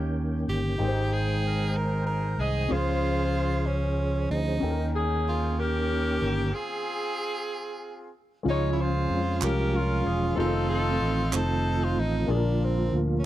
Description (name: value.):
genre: slow gospel.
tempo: 63 BPM (dotted quarters).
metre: 6/8.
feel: straight.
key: Ab major.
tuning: A4 = 441 Hz.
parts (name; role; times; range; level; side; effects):
clear saxophone section; melody; 0.0-12.3 s; Bb3 to G5; -32 LUFS; left 2 dB; none.
edgy tenor saxophone; melody; 0.0-13.3 s; C4 to Bb4; -32 LUFS; right 3 dB; none.
warm grand piano; accompaniment; 0.0-13.3 s; Ab2 to G5; -34 LUFS; left 4 dB; none.
mellow tonewheel organ; sustained chords; 0.0-13.3 s; D3 to G5; -30 LUFS; right 2 dB; slow rotary speaker, chorus vibrato.
fingered electric bass; bass; 0.0-13.2 s; Fb1 to F2; -28 LUFS; equal; none.
group handclap; percussion; 9.4-11.6 s; none; -31 LUFS; right 7 dB; none.
room: little or no reverb.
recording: dry, close 1970s-style studio recording.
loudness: -24 LUFS.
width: side -14 dB against mid.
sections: 0.0-8.5 A section; 8.5-13.3 B section.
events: stop 6.5-8.5.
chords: 0.0 Eb7; 0.8 Abmaj7; 2.7 Dbmaj7; 4.6 Eb7; 6.5 Ab6; 8.5 Db; 10.4 F7; 12.3 Bb.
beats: | 0.79 1.75 | 2.71 3.66 | 4.62 5.58 | 6.54 7.50 | 8.45 9.41 | 10.37 11.33 | 12.29 13.25.